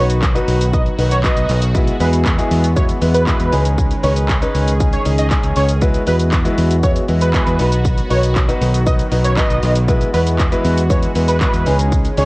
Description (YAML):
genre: dance-pop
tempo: 118 BPM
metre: 4/4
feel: straight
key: E major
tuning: A4 = 440 Hz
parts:
  - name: wide unison lead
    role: melody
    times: 0.0-12.3 s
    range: B4 to D#5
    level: -22 LUFS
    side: right 1 dB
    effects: sidechain pumping, tape echo
  - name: clear concert grand piano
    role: accompaniment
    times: 0.0-12.3 s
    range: G#3 to C#5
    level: -21 LUFS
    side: left 1 dB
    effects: sidechain pumping
  - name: sweeping resonant pad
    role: sustained chords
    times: 0.0-12.3 s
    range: D#3 to G#4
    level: -24 LUFS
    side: right 1 dB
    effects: chorus, sidechain pumping
  - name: fingered electric bass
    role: bass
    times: 0.0-12.3 s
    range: B1 to E2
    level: -17 LUFS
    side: equal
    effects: sidechain pumping
  - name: pop drum kit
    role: drums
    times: 0.1-12.3 s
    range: handclaps, hi-hat, kick drum, shaker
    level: -18 LUFS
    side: equal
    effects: none
room: little or no reverb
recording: worn, warbling old tape, cassette tape, warbly pitch drift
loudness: -13 LUFS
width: side -22 dB against mid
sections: 0.0-12.3 A section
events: none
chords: 0.0 B; 1.7 Eadd9; 3.5 C#sus2; 5.8 Eadd9; 7.6 B; 9.9 Eadd9; 11.7 C#sus2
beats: 0.22 0.73 1.24 | 1.75 2.26 2.77 3.27 | 3.78 4.29 4.80 5.31 | 5.82 6.33 6.83 7.34 | 7.85 8.36 8.87 9.38 | 9.88 10.39 10.90 11.41 | 11.92